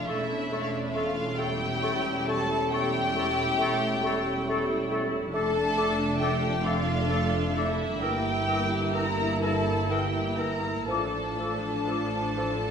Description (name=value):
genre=classical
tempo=39-47 BPM (dotted quarters)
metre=12/8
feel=rubato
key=D minor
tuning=A4 = 435 Hz
part: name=rich studio violin section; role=melody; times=0.0-12.7 s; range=D5 to Bb5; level=-32 LUFS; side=left 1 dB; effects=none
part: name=rich studio violin section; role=second line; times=0.0-12.7 s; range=E4 to Bb4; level=-33 LUFS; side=left 2 dB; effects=none
part: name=warm studio viola section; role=accompaniment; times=0.0-12.7 s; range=F3 to E4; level=-33 LUFS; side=right 1 dB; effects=none
part: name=mellow French horn section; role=sustained chords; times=0.0-12.7 s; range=F3 to E4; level=-34 LUFS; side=left 2 dB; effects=none
part: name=warm chamber double bass section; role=bass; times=0.0-12.7 s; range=E1 to A1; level=-34 LUFS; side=right 3 dB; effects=none
part: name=warm studio cello section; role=bass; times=0.0-12.7 s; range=E2 to A2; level=-36 LUFS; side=right 3 dB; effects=none
part: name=clear clarinet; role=second line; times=0.1-12.5 s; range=A4 to Bb4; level=-36 LUFS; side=left 3 dB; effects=none
part: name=mellow flute section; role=second line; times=0.1-12.5 s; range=C#6 to E6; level=-36 LUFS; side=left 4 dB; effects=none
part: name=mellow bassoon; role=accompaniment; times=0.1-12.5 s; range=E3 to A3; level=-36 LUFS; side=right 1 dB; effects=none
room=wet recital hall reverb, RT60 1.4 s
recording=minimal, uncompressed stereo recording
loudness=-25 LUFS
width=side -7 dB against mid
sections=0.0-12.7 A section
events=none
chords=0.1 A7/E; 5.3 Dm/F; 8.0 Edim/G; 10.9 Dm/A